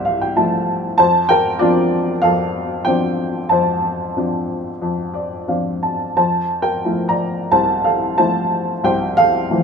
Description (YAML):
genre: classical, lyrical solo piano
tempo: 92 BPM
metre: 4/4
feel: uneven beats, rubato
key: unclear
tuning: A4 = 440 Hz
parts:
  - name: clear upright piano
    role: solo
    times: 0.0-9.6 s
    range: C2 to Bb5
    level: -15 LUFS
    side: equal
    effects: none
room: light reverb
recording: minimal, uncompressed stereo recording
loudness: -15 LUFS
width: side -6 dB against mid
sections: 0.0-9.6 A section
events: upright piano fill 0.0-1.0, 4.8-6.2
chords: 0.0 Fmaj7; 1.0 Dm7/F; 6.2 Fmaj7